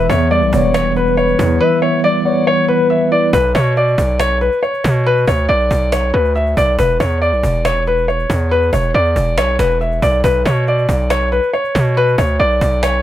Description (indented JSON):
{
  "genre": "hip hop, trap",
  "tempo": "139 BPM",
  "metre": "4/4",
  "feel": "half-time",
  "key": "B minor",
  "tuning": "A4 = 439 Hz",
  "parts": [
    { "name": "dark grand piano", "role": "melody", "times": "0.0-13.0 s", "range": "B4 to E5", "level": "-15 LUFS", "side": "left 1 dB", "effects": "none" },
    { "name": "gliding portamento lead", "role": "second line", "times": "0.0-3.3 s", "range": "B4 to E5", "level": "-20 LUFS", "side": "left 3 dB", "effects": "chorus, ping-pong delay" },
    { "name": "mellow tine electric piano", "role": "accompaniment", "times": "0.0-3.4 s", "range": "E3 to E4", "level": "-17 LUFS", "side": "right 1 dB", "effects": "fast stereo tremolo" },
    { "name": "distorted 808-style bass", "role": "bass", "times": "0.0-13.0 s", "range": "E1 to B2", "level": "-16 LUFS", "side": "right 1 dB", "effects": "distortion" },
    { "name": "cajon", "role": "drums", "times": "0.1-13.0 s", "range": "none", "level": "-24 LUFS", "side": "right 1 dB", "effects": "none" }
  ],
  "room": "studio ambience",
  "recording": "none",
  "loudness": "-12 LUFS",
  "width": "side -12 dB against mid",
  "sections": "0.0-3.3 A section; 3.3-13.0 B section",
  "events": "silent gap 1.6-3.3",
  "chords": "0.0 Em; 3.3 Bm; 6.8 E5; 10.2 Bm"
}